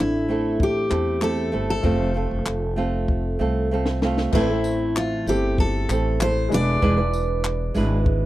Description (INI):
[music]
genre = acoustic pop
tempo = 97 BPM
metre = 4/4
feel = straight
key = A minor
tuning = A4 = 440 Hz
[part]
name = picked steel-string acoustic guitar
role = melody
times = 0.0-8.3 s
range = E4 to D5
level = -25 LUFS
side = left 1 dB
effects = none
[part]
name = felt-muted upright piano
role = accompaniment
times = 0.0-8.3 s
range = G#3 to E5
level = -34 LUFS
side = left 8 dB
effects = none
[part]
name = flamenco guitar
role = accompaniment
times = 0.0-8.3 s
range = A2 to B4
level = -25 LUFS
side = right 3 dB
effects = none
[part]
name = upright bass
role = bass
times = 0.0-8.3 s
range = E1 to E2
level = -24 LUFS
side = equal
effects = none
[part]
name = compact cocktail drum kit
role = drums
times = 0.6-8.2 s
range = crash cymbal, handclaps, kick drum, snare drum, tambourine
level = -24 LUFS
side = left 1 dB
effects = none
[sound]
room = little or no reverb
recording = dry, close 1970s-style studio recording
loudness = -20 LUFS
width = side -15 dB against mid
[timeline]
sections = 0.0-4.3 A section; 4.3-8.3 B section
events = drum fill 3.1-4.3; felt piano fill 8.1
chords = 0.0 Am; 1.8 F; 4.3 Am; 6.5 E7